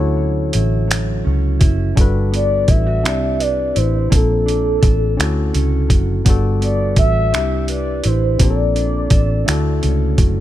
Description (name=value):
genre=slow six-eight R&B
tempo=56 BPM (dotted quarters)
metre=6/8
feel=straight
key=G major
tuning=A4 = 435 Hz
part: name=mellow electric guitar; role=second line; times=0.0-10.4 s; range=D3 to B4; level=-25 LUFS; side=right 7 dB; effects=none
part: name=barky tine electric piano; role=accompaniment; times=0.0-10.4 s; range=A3 to D5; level=-24 LUFS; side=left 7 dB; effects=overdrive
part: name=vintage muted fingered electric bass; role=bass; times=0.0-10.4 s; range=F#1 to D2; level=-18 LUFS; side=equal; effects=none
part: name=dusty soul sampler-style drum kit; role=drums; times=0.5-10.3 s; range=finger snaps, hi-hat, kick drum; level=-15 LUFS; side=equal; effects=none
part: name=mellow horn-like synth lead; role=melody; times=2.4-10.2 s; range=A4 to E5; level=-21 LUFS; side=equal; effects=chorus, phaser
room=digital ambience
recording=none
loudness=-14 LUFS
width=side -13 dB against mid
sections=0.0-2.0 A section; 2.0-10.4 B section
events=none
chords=0.0 Dmaj9; 2.0 Gmaj9; 3.0 Cmaj9; 4.1 Bbmaj9; 5.2 Dmaj9; 6.3 Gmaj9; 7.3 Cmaj9; 8.4 Bbmaj9; 9.5 Dmaj9